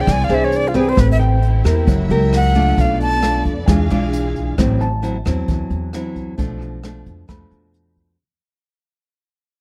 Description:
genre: bossa nova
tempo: 133 BPM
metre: 4/4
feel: straight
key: unclear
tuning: A4 = 435 Hz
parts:
  - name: breathy bright jazz flute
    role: melody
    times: 0.0-3.4 s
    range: F4 to A5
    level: -21 LUFS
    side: equal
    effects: none
  - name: nylon-string guitar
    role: accompaniment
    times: 0.0-8.2 s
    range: A2 to B#4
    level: -23 LUFS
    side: equal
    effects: none
  - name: warm symphonic string section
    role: sustained chords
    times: 0.0-4.6 s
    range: A#3 to F5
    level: -30 LUFS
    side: equal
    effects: none
  - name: upright bass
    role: bass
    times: 0.0-8.1 s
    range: F#1 to F2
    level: -21 LUFS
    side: equal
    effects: none
  - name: jazz brush drum kit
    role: drums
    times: 0.1-8.1 s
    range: hi-hat, kick drum, rim click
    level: -24 LUFS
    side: equal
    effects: none
  - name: clear grand piano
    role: accompaniment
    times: 1.2-8.2 s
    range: G5 to B5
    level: -33 LUFS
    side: equal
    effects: none
room: little or no reverb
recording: close, detailed microphones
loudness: -17 LUFS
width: mono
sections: 0.0-4.6 A section; 4.6-8.2 B section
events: flute solo 0.0-4.6; fade-out 4.6-8.2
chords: 0.0 E7alt; 1.0 Am9; 1.9 F#7b9; 2.8 Bm7b5; 3.7 E7b9; 4.6 Am6; 6.4 Bm7b5

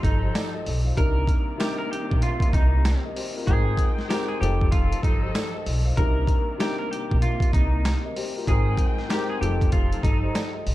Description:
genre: hip hop, boom-bap hip-hop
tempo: 96 BPM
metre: 4/4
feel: swing 62% on 16ths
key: C minor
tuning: A4 = 440 Hz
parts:
  - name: clean electric guitar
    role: melody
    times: 0.0-10.5 s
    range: Eb4 to Bb4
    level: -31 LUFS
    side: equal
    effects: lush chorus, high-pass filter, low-pass filter
  - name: dark upright piano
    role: accompaniment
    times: 0.0-10.7 s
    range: Ab2 to G5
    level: -30 LUFS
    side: left 3 dB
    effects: high-pass filter, low-pass filter
  - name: warm studio string section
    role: sustained chords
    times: 0.0-10.7 s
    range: C3 to G5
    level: -36 LUFS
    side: left 1 dB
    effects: high-pass filter, low-pass filter
  - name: upright bass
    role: bass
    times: 0.0-10.7 s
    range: F1 to C2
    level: -24 LUFS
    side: equal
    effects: none
  - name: boom bap sampler-style drum kit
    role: drums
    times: 0.0-10.7 s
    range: hi-hat, kick drum, rim click, snare drum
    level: -24 LUFS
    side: equal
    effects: none
  - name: tambourine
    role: percussion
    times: 0.3-10.5 s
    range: none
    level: -45 LUFS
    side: right 6 dB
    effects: none
room: light reverb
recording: dark, warm production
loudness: -21 LUFS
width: side -16 dB against mid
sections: 0.0-10.7 A section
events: none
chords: 0.0 F7; 1.0 Cm7; 3.5 Abmaj7; 4.4 F7; 6.0 Cm7; 8.5 Abmaj7; 9.4 F7

